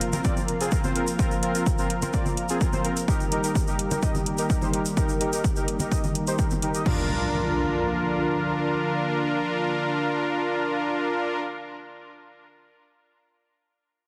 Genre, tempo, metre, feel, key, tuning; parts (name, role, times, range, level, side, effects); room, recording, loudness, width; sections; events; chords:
progressive house; 127 BPM; 4/4; straight; Bb major; A4 = 440 Hz
lush unison pad; sustained chords; 0.0-11.4 s; C3 to Bb4; -32 LUFS; equal; chorus, sidechain pumping
house drum kit; drums; 0.0-7.0 s; crash cymbal, hi-hat; -36 LUFS; equal; overdrive
soft supersaw; stabs; 0.1-11.4 s; C4 to Eb5; -29 LUFS; equal; sidechain pumping, low-pass filter, delay
congas; percussion; 0.1-6.6 s; -34 LUFS; equal; sidechain pumping on perc
tube shaker; percussion; 0.1-6.8 s; -39 LUFS; equal
electronic kick drum; drums; 0.2-7.0 s; -28 LUFS; equal; overdrive
impact; sound effects; 6.9-11.8 s; -35 LUFS; equal
moderate lush hall reverb, RT60 1.9 s; heavily compressed radio sound; -25 LUFS; mono
0.0-6.9 A section; 6.9-10.6 B section
filter sweep on supersaw synth 0.0-6.9
0.0 Bbsus2; 3.1 Eb; 6.9 Bb